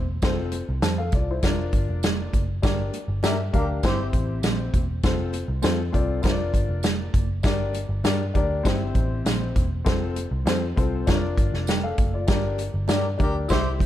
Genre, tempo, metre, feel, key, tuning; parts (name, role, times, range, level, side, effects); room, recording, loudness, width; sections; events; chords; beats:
uptempo 1960s-style soul; 99 BPM; 4/4; straight; F major; A4 = 438 Hz
warm upright piano; accompaniment; 0.0-13.9 s; C4 to A5; -28 LUFS; left 5 dB
vintage muted picked electric bass; bass; 0.0-13.9 s; E1 to G2; -27 LUFS; equal
natural country drum kit; drums; 0.2-13.9 s; hi-hat, kick drum, snare drum; -24 LUFS; equal
congas; percussion; 0.2-13.9 s; -39 LUFS; right 13 dB
tambourine; percussion; 0.2-13.6 s; -41 LUFS; right 14 dB
mellow horn section; second line; 3.2-4.0, 12.9-13.7 s; D4 to C5; -31 LUFS; right 2 dB
light reverb, small room ambience; dark, warm production; -21 LUFS; side -12 dB against mid
0.0-13.9 A section
band accent 2.6-5.0, 12.3-13.9
0.2 F; 1.4 Bb/F; 2.6 Gm; 3.8 C/G; 5.0 F; 6.2 Bb/F; 7.4 Gm; 8.7 C/G; 9.9 F; 11.1 Bb/F; 12.3 Gm
| 0.23 0.83 1.43 2.03 | 2.63 3.23 3.83 4.43 | 5.03 5.64 6.24 6.84 | 7.45 8.05 8.65 9.26 | 9.87 10.47 11.08 11.68 | 12.29 12.90 13.50